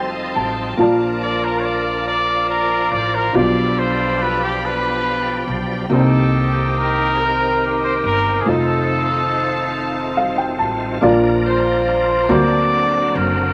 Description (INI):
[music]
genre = gospel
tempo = 47 BPM (dotted quarters)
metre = 6/8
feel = straight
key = Bb major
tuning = A4 = 440 Hz
[part]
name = dark upright piano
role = accompaniment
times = 0.0-13.5 s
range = Bb2 to A5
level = -22 LUFS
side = equal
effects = none
[part]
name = bright tonewheel organ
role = sustained chords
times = 0.0-13.5 s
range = B2 to G5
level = -28 LUFS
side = equal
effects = fast rotary speaker, overdrive, chorus vibrato
[part]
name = warm studio string section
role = sustained chords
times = 0.0-11.0 s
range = Bb4 to C6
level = -32 LUFS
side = equal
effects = none
[part]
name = upright bass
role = bass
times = 0.0-13.5 s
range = F1 to D2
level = -27 LUFS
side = equal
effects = none
[part]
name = mellow horn section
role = melody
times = 0.8-13.5 s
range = Bb3 to D5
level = -23 LUFS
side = equal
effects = none
[part]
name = brilliant trumpet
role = melody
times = 1.2-10.2 s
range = G4 to D5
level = -23 LUFS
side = equal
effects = none
[sound]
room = wet studio reverb, RT60 0.5 s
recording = none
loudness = -18 LUFS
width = mono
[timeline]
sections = 0.0-11.0 A section; 11.0-13.5 B section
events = upright piano fill 0.0-0.8, 9.7-11.0; tonewheel organ fill 0.0-0.8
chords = 0.0 F7; 0.8 Bbmaj7; 3.3 G7/B; 5.9 Cm7; 8.5 F7; 11.0 Bb; 12.3 D7b13